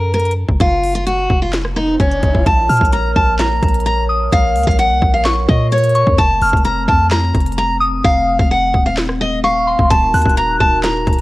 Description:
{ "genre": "hip hop, trap", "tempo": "129 BPM", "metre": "4/4", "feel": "half-time", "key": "Bb harmonic minor", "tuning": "A4 = 440 Hz", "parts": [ { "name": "picked steel-string acoustic guitar", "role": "melody", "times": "0.0-11.2 s", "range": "Db4 to Bb5", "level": "-16 LUFS", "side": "equal", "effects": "low-pass filter, cassette tape" }, { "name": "warm 808-style bass", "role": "bass", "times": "0.0-11.2 s", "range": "Eb1 to Bb2", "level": "-18 LUFS", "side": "equal", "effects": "none" }, { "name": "trap drum kit", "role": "drums", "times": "0.1-11.2 s", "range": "handclaps, hi-hat, kick drum, rim click, snare drum", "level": "-17 LUFS", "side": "equal", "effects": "cassette tape" }, { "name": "riser", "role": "sound effects", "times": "1.5-2.5 s", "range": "none", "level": "-29 LUFS", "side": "equal", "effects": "none" }, { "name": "glass harmonica", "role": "sustained chords", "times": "2.5-11.2 s", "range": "A3 to Db5", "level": "-24 LUFS", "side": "right 1 dB", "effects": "cassette tape" }, { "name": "soft synth bell", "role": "second line", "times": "2.7-10.8 s", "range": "C6 to Gb6", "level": "-20 LUFS", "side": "left 1 dB", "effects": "chorus, tremolo, cassette tape, tape echo" } ], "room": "little or no reverb", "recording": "home recording on cassette", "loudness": "-12 LUFS", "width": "side -18 dB against mid", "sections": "0.0-2.5 A section; 2.5-11.2 B section", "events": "riser 1.5-2.5; hi-hats muted 8.0-9.9", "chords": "0.0 N.C.; 2.5 Bbm; 6.2 F; 9.9 Ebm" }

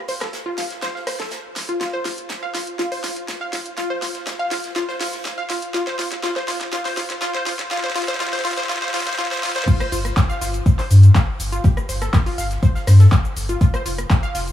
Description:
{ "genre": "progressive house", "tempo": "122 BPM", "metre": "4/4", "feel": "straight", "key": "F major", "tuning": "A4 = 440 Hz", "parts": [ { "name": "wide unison pluck", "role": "arpeggios", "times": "0.1-14.4 s", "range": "F4 to F5", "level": "-25 LUFS", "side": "equal", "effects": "sidechain pumping, dub echo" }, { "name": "deep house drum kit", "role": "drums", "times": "0.1-14.5 s", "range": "cabasa, crash cymbal, handclaps, hi-hat, rim click, snare drum", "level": "-27 LUFS", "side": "equal", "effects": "overdrive, high-pass filter on snare, high-pass filter on hats, high-pass filter on cymbals, high-pass filter on perc" }, { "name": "modern studio drum kit", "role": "drums", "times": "0.1-14.5 s", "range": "hi-hat, snare drum", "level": "-36 LUFS", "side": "right 2 dB", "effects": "none" }, { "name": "electronic kick drum", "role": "drums", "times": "9.7-14.2 s", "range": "none", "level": "-16 LUFS", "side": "equal", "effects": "none" }, { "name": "saturated sub bass", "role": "bass", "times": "9.9-14.5 s", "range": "F1 to G2", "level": "-13 LUFS", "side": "left 1 dB", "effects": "sidechain pumping" } ], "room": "light reverb", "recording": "high-pass filter", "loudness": "-17 LUFS", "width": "side -12 dB against mid", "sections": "0.0-9.7 A section; 9.7-14.5 B section", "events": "build-up 0.0-9.7; drum fill 0.0-9.7; drop 9.7-14.5", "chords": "0.0 F; 1.8 F5; 9.7 N.C." }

